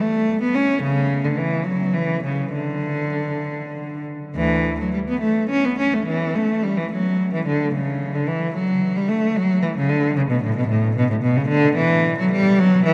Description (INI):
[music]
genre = classical, baroque-style suite movement for unaccompanied cello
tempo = 65-76 BPM (dotted quarters)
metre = 6/8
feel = rubato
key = D major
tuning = A4 = 440 Hz
[part]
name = rich cello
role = solo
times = 0.0-12.9 s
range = D2 to C#4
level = -20 LUFS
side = equal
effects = none
[sound]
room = wet cathedral reverb, RT60 6.6 s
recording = dark, warm production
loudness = -21 LUFS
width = mono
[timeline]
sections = 0.0-4.4 A section; 4.4-12.9 B section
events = none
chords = none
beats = | 0.82 1.66 | 2.55 3.47 | 4.37 5.22 | 6.07 6.92 | 7.74 8.54 | 9.35 10.15 | 10.95 11.76 | 12.58